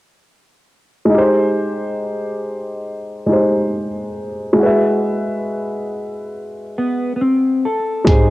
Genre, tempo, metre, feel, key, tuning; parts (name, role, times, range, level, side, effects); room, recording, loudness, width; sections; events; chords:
lo-fi hip hop; 69 BPM; 4/4; swing 62% on 16ths; A4 = 442 Hz
dark upright piano; accompaniment; 1.1-8.3 s; Ab3 to E5; -16 LUFS; equal; cassette tape, low-pass filter
mellow electric guitar; melody; 6.8-8.3 s; B3 to A4; -16 LUFS; left 1 dB; lush chorus, low-pass filter, cassette tape
upright bass; bass; 8.1-8.3 s; Ab1; -16 LUFS; equal
lo-fi sampler-style drum kit; drums; 8.1-8.3 s; hi-hat, kick drum; -12 LUFS; right 1 dB; cassette tape
wet spring reverb, RT60 2.3 s; home recording on cassette; -16 LUFS; side -17 dB against mid
1.1-8.1 A section
1.1 Abmaj7; 4.6 Abm7b13